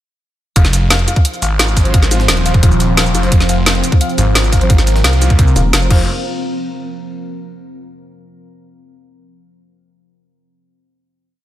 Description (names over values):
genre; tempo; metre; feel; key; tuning
dark technical drum and bass; 174 BPM; 4/4; straight; F minor; A4 = 442 Hz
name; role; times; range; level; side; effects
deep dark ambient pad; sustained chords; 1.4-6.1 s; F3 to C5; -22 LUFS; left 1 dB; chorus, built-in reverb, sidechain pumping
felt-muted upright piano; arpeggios; 0.6-6.1 s; F4 to F5; -24 LUFS; left 4 dB; sidechain pumping, diffuse ambient delay
snarling distorted saw bass; bass; 0.6-6.1 s; Eb1 to C2; -14 LUFS; equal; distortion
drum and bass drum kit; drums; 0.6-6.0 s; crash cymbal, hi-hat, shaker, snare drum; -17 LUFS; equal; overdrive
electronic kick drum; drums; 0.6-6.0 s; none; -11 LUFS; equal; overdrive
jungle sampler-style drum kit; drums; 0.6-5.8 s; hi-hat, snare drum; -26 LUFS; equal; none
mellow brass ensemble; stabs; 1.9-6.0 s; F3 to C5; -26 LUFS; right 1 dB; diffuse ambient delay
vowel-sweep wobble bass; bass; 5.6-5.9 s; Eb1 to F1; -14 LUFS; equal; chorus
room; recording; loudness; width
light reverb; none; -10 LUFS; side -13 dB against mid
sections
0.6-6.1 drop; 6.1-7.5 final hit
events
drop 0.6-6.1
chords
0.6 F5; 6.1 N.C.